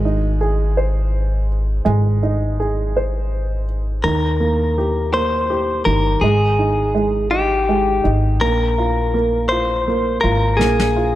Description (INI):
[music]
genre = six-eight pop ballad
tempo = 55 BPM (dotted quarters)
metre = 6/8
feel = straight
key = Eb major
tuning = A4 = 438 Hz
[part]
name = warm upright piano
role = accompaniment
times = 0.0-11.2 s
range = Eb3 to C5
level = -21 LUFS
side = right 4 dB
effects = none
[part]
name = upright bass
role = bass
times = 0.0-11.2 s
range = G1 to Eb2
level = -19 LUFS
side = equal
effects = none
[part]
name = direct-recorded clean electric guitar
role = melody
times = 4.0-11.2 s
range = G4 to C5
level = -18 LUFS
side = left 2 dB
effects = spring reverb, analog delay
[part]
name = snare drum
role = drums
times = 10.6-11.0 s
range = none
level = -24 LUFS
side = left 2 dB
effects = none
[sound]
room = little or no reverb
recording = none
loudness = -16 LUFS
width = side -14 dB against mid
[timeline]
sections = 0.0-4.0 A section; 4.0-11.2 B section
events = drum fill 10.6-11.2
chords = 0.0 Ab; 4.0 Eb; 6.2 Ab5; 8.4 Bbsus2